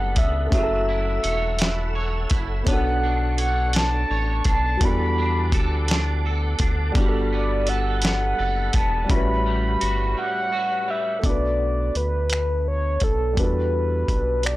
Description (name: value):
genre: slow six-eight R&B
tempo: 56 BPM (dotted quarters)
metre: 6/8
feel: straight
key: B minor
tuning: A4 = 439 Hz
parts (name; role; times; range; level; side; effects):
- mellow horn-like synth lead; melody; 0.0-14.6 s; A4 to B5; -25 LUFS; equal; chorus
- electric guitar at the edge of break-up; second line; 0.0-11.8 s; A2 to C#5; -32 LUFS; right 4 dB; ensemble chorus, analog delay
- warm concert grand piano; accompaniment; 0.0-14.6 s; F#3 to C#5; -29 LUFS; equal; none
- tonewheel organ; sustained chords; 0.0-11.2 s; G3 to E6; -34 LUFS; equal; chorus vibrato, slow rotary speaker
- round analog bass; bass; 0.0-14.6 s; E1 to E2; -24 LUFS; equal; none
- dusty soul sampler-style drum kit; drums; 0.2-14.6 s; finger snaps, hi-hat, kick drum, snare drum; -22 LUFS; equal; none
room: little or no reverb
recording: dry, gritty hardware recording, transformer saturation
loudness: -20 LUFS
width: side -17 dB against mid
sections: 0.0-11.2 A section; 11.2-14.6 B section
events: break 10.2-11.2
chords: 0.0 Gmaj9; 0.5 F#m7; 2.7 Bm9; 4.8 Em11; 7.0 Gmaj9; 9.1 A13; 11.2 Bm7; 13.4 Em11